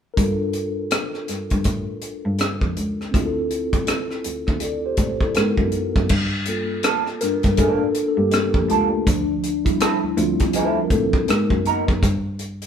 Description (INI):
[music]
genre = R&B, neo-soul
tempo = 81 BPM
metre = 4/4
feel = swing 59% on 16ths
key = G dorian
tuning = A4 = 442 Hz
[part]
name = mellow tine electric piano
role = accompaniment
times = 0.1-12.1 s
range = F3 to D5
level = -23 LUFS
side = left 1 dB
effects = medium stereo tremolo
[part]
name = rich cello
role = bass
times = 0.2-12.7 s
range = C#2 to A2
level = -25 LUFS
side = equal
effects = none
[part]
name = tight funk drum kit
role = drums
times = 0.2-12.7 s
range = crash cymbal, hi-hat, kick drum, rim click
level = -22 LUFS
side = equal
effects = none
[part]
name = semi-hollow electric guitar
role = second line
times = 6.8-11.8 s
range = F3 to Bb4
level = -23 LUFS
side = right 4 dB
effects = wah
[sound]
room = moderate studio reverb, RT60 0.9 s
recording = band playing live in one room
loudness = -18 LUFS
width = side -8 dB against mid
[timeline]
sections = 0.2-6.1 A section; 6.1-12.7 B section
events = tine electric piano solo 6.1-12.7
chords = 0.2 Gm9; 3.1 Dm9; 5.4 Abm9; 6.1 Gm9; 9.1 Dm9; 11.3 Abm9; 12.0 N.C.